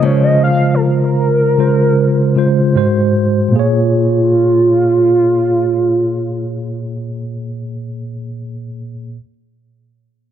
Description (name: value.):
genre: contemporary R&B.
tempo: 77 BPM.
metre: 4/4.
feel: straight.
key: Bb minor.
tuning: A4 = 440 Hz.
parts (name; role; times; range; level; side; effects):
warm velvety synth lead; melody; 0.0-7.4 s; F4 to F5; -14 LUFS; right 2 dB; chorus, digital delay.
mellow tine electric piano; accompaniment; 0.0-9.2 s; Ab2 to Db5; -14 LUFS; equal; medium stereo tremolo.
flamenco guitar; arpeggios; 0.0-1.0 s; Db3 to Eb4; -23 LUFS; left 5 dB; digital delay.
room: light reverb, digital ambience.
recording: none.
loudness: -11 LUFS.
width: side -10 dB against mid.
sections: 0.0-3.5 A section; 3.5-6.7 B section.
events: none.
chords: 0.0 Bbm9/Db; 2.8 Ab7; 3.5 Bbm7.